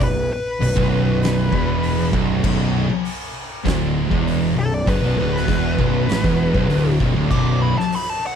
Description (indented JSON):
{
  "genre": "stoner and doom metal",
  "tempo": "99 BPM",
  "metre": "4/4",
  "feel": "straight",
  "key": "B minor",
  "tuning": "A4 = 440 Hz",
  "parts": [
    { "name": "fuzz lead guitar", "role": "melody", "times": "0.0-8.4 s", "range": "A4 to D6", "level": "-24 LUFS", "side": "left 2 dB", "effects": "wah, distortion, slapback echo" },
    { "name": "fuzz guitar", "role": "riff", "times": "0.0-7.8 s", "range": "B1 to A2", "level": "-22 LUFS", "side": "right 10 dB", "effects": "distortion" },
    { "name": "high-gain distorted guitar", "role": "riff", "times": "0.0-7.8 s", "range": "B1 to A2", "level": "-26 LUFS", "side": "equal", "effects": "distortion" },
    { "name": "thick fuzz guitar", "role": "riff", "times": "0.0-7.8 s", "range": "B1 to A2", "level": "-23 LUFS", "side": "left 8 dB", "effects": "distortion" },
    { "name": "fuzz picked electric bass", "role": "bass", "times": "0.0-7.8 s", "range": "B0 to A1", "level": "-24 LUFS", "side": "equal", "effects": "overdrive" },
    { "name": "oversized low-tuned drum kit", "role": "drums", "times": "0.0-8.1 s", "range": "crash cymbal, hi-hat, kick drum, snare drum", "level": "-25 LUFS", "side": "equal", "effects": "none" }
  ],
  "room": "studio reverb",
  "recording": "none",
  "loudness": "-16 LUFS",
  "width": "side -8 dB against mid",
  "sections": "0.0-8.4 A section",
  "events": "lead electric guitar solo 0.0-8.4",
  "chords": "0.0 Bm"
}